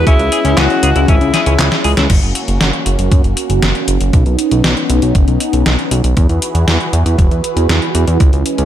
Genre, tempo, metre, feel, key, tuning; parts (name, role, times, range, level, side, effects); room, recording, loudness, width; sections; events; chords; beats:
synthwave; 118 BPM; 4/4; straight; A4 = 441 Hz
edgy alto saxophone; melody; 0.0-1.8 s; E4 to F#4; -18 LUFS; equal; digital delay
phased analog pad; sustained chords; 0.0-8.7 s; E3 to B4; -18 LUFS; equal; phaser, chorus, sidechain pumping
bright tine electric piano; stabs; 0.0-2.1 s; C#4 to G#4; -21 LUFS; left 3 dB; medium stereo tremolo, digital delay
fat analog bass; bass; 0.0-8.7 s; E1 to F#2; -14 LUFS; equal
clean electric guitar; riff; 0.1-2.0 s; C#4 to G#4; -22 LUFS; left 3 dB; analog chorus, digital delay
detuned 8-bit digital drum machine; drums; 0.1-8.7 s; crash cymbal, handclaps, hi-hat, snare drum; -18 LUFS; equal; gated reverb
electronic kick drum; drums; 0.1-8.3 s; -12 LUFS; equal
little or no reverb; -10 LUFS; side -11 dB against mid
0.0-2.1 A section; 2.1-8.7 B section
drum fill 1.3-2.1
0.1 C#m; 2.1 F#; 4.1 Badd9; 6.2 Eadd9
| 0.07 0.57 1.08 1.59 | 2.10 2.61 3.12 3.63 | 4.13 4.64 5.15 5.66 | 6.17 6.68 7.18 7.69 | 8.20